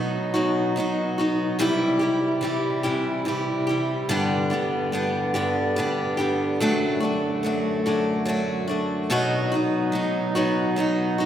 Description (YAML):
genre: acoustic folk duo or small band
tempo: 48 BPM (dotted quarters)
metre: 6/8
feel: straight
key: unclear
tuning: A4 = 439 Hz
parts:
  - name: picked steel-string acoustic guitar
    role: accompaniment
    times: 0.0-11.3 s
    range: G2 to G4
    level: -23 LUFS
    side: equal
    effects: none
  - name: pedal harmonium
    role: sustained chords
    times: 0.0-11.3 s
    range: F#2 to E4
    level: -26 LUFS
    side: right 1 dB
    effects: none
room: wet cathedral reverb, RT60 4.7 s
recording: recorded in a church or concert hall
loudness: -21 LUFS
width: side -10 dB against mid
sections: 0.0-11.3 A section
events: none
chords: 0.0 B; 1.6 C; 4.1 G; 6.6 D/F#; 9.1 B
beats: 0.35 | 1.60 2.86 | 4.11 5.36 | 6.61 7.86 | 9.11 10.36